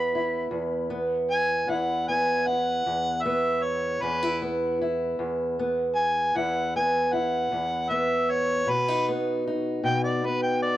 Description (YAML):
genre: acoustic country blues, solo or duo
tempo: 51 BPM (dotted quarters)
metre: 12/8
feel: straight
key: E major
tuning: A4 = 440 Hz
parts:
  - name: mellow harmonica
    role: melody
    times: 0.0-10.8 s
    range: B4 to B5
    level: -25 LUFS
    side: equal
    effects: none
  - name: fingerpicked steel-string acoustic guitar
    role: accompaniment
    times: 0.0-10.8 s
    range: E2 to E4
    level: -26 LUFS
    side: equal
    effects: none
room: small room ambience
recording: dry, close 1970s-style studio recording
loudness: -23 LUFS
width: side -14 dB against mid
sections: 0.0-10.8 A section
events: harmonica solo 0.0-10.8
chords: 0.0 E5; 8.7 B